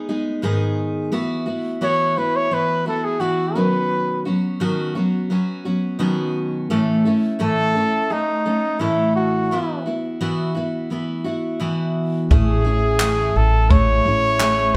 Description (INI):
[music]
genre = acoustic pop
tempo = 86 BPM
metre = 4/4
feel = straight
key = unclear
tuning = A4 = 440 Hz
[part]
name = picked steel-string acoustic guitar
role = accompaniment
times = 0.0-14.8 s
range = G#2 to A4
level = -23 LUFS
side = equal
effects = none
[part]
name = breathy trumpet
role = melody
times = 1.8-14.8 s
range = D#4 to C#5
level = -22 LUFS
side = equal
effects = none
[part]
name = upright bass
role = bass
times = 12.3-14.8 s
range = A1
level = -22 LUFS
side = equal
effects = none
[part]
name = compact cocktail drum kit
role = drums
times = 12.3-14.6 s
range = handclaps, kick drum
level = -19 LUFS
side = equal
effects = none
[sound]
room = moderate stone room reverb, RT60 1.0 s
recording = band playing live in one room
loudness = -20 LUFS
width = mono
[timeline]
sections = 0.0-12.3 A section; 12.3-14.8 B section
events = none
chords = 0.0 G#m; 1.1 Esus2; 3.6 Badd9; 6.7 A; 9.5 Bsus4; 12.3 Amaj7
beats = 0.41 | 1.11 1.81 2.51 3.21 | 3.91 4.61 5.31 6.01 | 6.71 7.41 8.11 8.81 | 9.51 10.21 10.91 11.61 | 12.30 13.00 13.70 14.40